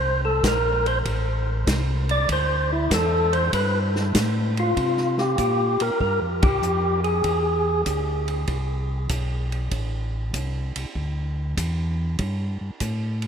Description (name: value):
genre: soul jazz organ trio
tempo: 97 BPM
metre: 4/4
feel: swing 68% on 8ths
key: C mixolydian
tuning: A4 = 440 Hz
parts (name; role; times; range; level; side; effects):
- percussive tonewheel organ; melody; 0.0-7.8 s; E4 to D5; -23 LUFS; left 1 dB; overdrive, fast rotary speaker
- mellow tonewheel organ; bass; 0.0-13.3 s; A1 to C3; -25 LUFS; equal; chorus vibrato, slow rotary speaker
- vintage drum kit; drums; 0.4-13.3 s; hi-hat, kick drum, ride cymbal, snare drum; -28 LUFS; right 1 dB; none
room: moderate cathedral reverb, RT60 7.1 s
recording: in a vast, echoing space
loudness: -21 LUFS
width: side -7 dB against mid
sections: 0.0-4.8 A section; 4.8-13.3 B section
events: tonewheel organ solo 0.0-4.8; band accent 6.3-6.6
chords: 0.0 Bbsus2; 1.1 Am; 2.3 Dsus2; 3.5 Gsus2; 4.8 C7sus4; 7.2 E7b13; 9.7 Am; 12.2 Gsus2